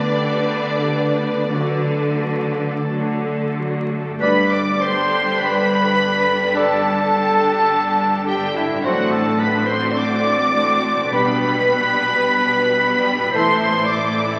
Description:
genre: classical, slow romantic movement for symphony orchestra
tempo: 42-55 BPM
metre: 4/4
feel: rubato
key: G major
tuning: A4 = 440 Hz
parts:
  - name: rich studio violin section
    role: melody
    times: 0.0-14.4 s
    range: D5 to D6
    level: -23 LUFS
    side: equal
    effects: none
  - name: large flute ensemble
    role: second line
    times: 0.0-14.2 s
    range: E4 to D5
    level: -26 LUFS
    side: equal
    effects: none
  - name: rich studio violin section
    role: second line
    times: 0.0-14.4 s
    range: D4 to A4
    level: -31 LUFS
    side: equal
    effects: none
  - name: rich studio viola section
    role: accompaniment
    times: 0.0-14.4 s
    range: D3 to B4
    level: -29 LUFS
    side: equal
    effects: none
  - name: mellow French horn section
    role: sustained chords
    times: 0.0-13.8 s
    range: D3 to E4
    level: -31 LUFS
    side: equal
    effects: none
  - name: concert harp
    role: arpeggios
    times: 0.0-14.4 s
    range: G2 to D6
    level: -34 LUFS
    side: equal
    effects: none
  - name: timpani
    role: percussion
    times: 0.0-3.5 s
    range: none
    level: barely audible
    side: none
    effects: none
  - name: rich studio cello section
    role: bass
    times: 0.1-14.3 s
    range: G2 to D3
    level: -28 LUFS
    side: equal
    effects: none
  - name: warm studio double bass section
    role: bass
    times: 0.1-14.3 s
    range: G1 to D2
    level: -31 LUFS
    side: equal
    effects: none
  - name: warm clarinet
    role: second line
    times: 4.2-14.4 s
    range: E4 to D5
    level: -26 LUFS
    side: equal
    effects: none
  - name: dark trumpet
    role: stabs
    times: 4.2-13.8 s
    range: A4 to D5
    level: -27 LUFS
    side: equal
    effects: none
room: wet concert hall reverb, RT60 2.2 s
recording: very old 78 rpm record, vinyl crackle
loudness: -18 LUFS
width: mono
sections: 0.0-4.2 A section; 4.2-14.4 B section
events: none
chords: 0.0 G/D; 1.5 D; 4.2 G; 8.8 D7/A; 11.1 G/B; 13.3 Am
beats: 0.10 1.50 2.87 | 4.21 5.39 6.55 7.70 | 8.84 9.96 11.11 12.23 | 13.33

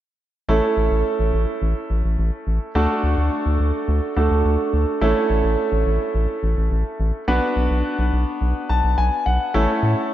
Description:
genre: synth-pop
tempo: 106 BPM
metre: 4/4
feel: straight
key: A major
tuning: A4 = 440 Hz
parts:
  - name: bright grand piano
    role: accompaniment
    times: 0.5-10.1 s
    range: A3 to A5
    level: -21 LUFS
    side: right 1 dB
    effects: none
  - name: round analog bass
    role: bass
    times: 0.5-9.9 s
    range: A1 to A2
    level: -19 LUFS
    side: equal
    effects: none
room: moderate cathedral reverb, RT60 5.6 s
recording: dreamy mix soaked in reverb, nothing above 7.7 kHz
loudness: -18 LUFS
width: side -12 dB against mid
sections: 0.5-9.5 A section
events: grand piano fill 8.4-9.5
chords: 0.5 A; 2.8 D; 5.0 A; 7.3 Bm; 9.5 A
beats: | 0.49 1.05 1.62 2.18 | 2.75 3.32 3.88 4.45 | 5.01 5.58 6.15 6.71 | 7.28 7.84 8.41 8.98 | 9.54 10.11

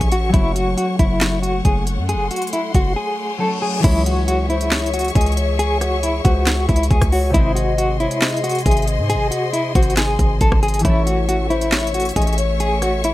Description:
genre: hip hop, trap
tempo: 137 BPM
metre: 4/4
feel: half-time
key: C# harmonic minor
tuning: A4 = 440 Hz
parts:
  - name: mellow electric guitar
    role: melody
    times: 0.0-13.1 s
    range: E4 to A4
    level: -21 LUFS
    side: left 1 dB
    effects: tremolo, tape echo
  - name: concert harp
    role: accompaniment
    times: 0.0-13.1 s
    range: B#2 to A4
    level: -26 LUFS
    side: left 1 dB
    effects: none
  - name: warm symphonic string section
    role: sustained chords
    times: 0.0-13.1 s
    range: A3 to C#6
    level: -28 LUFS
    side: left 2 dB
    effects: none
  - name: hard-hitting 808-style bass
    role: bass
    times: 0.0-13.1 s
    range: F#1 to G#2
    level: -20 LUFS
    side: equal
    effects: none
  - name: trap drum kit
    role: drums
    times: 0.0-13.1 s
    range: crash cymbal, handclaps, hi-hat, kick drum, rim click, snare drum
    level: -19 LUFS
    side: equal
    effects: none
  - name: reverse cymbal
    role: sound effects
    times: 3.1-3.8 s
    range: none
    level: -28 LUFS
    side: left 7 dB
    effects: none
  - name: hollow clarinet-like synth lead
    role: second line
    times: 3.8-13.1 s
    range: B#4 to E5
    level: -27 LUFS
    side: left 4 dB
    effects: chorus, tape echo
room: little or no reverb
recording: none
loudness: -15 LUFS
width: side -16 dB against mid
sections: 0.0-3.8 A section; 3.8-13.1 B section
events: reverse cymbal 3.1-3.8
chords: 0.3 F#m; 3.8 C#m; 7.3 G#; 10.8 A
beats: | 0.34 0.78 1.21 1.65 | 2.09 2.53 2.96 3.40 | 3.84 4.28 4.72 5.16 | 5.59 6.03 6.47 6.91 | 7.34 7.78 8.22 8.66 | 9.10 9.53 9.97 10.41 | 10.85 11.29 11.72 12.16 | 12.60 13.04

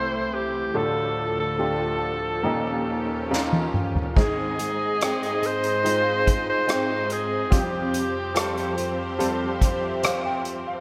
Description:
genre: pop ballad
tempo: 72 BPM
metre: 4/4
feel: straight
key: unclear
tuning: A4 = 442 Hz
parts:
  - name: clear alto saxophone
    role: melody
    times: 0.0-8.8 s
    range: G4 to C5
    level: -28 LUFS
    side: equal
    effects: delay
  - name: clear baby grand piano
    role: accompaniment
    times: 0.0-10.8 s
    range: C2 to G5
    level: -30 LUFS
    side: equal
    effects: ensemble chorus
  - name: warm chamber string section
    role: sustained chords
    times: 0.0-10.8 s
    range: C2 to Eb5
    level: -34 LUFS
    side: equal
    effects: none
  - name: soft-mallet drum kit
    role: drums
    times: 3.3-10.6 s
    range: crash cymbal, hi-hat, kick drum, rim click, snare drum, toms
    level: -27 LUFS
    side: equal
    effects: gated reverb
  - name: fingerpicked plugged-in steel-string acoustic guitar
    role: arpeggios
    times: 4.2-10.8 s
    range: F3 to C5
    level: -35 LUFS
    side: equal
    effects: delay
room: wet plate reverb, RT60 3.1 s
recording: bright 1980s-style digital production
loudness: -24 LUFS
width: mono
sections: 0.0-4.2 A section; 4.2-10.8 B section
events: drum fill 3.3-4.2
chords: 0.0 Am/C; 0.8 Dm; 2.4 Eb7; 4.2 Ab; 7.5 Fsus2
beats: | 0.75 1.59 2.45 3.31 | 4.17 5.01 5.85 6.69 | 7.52 8.36 9.20 10.03

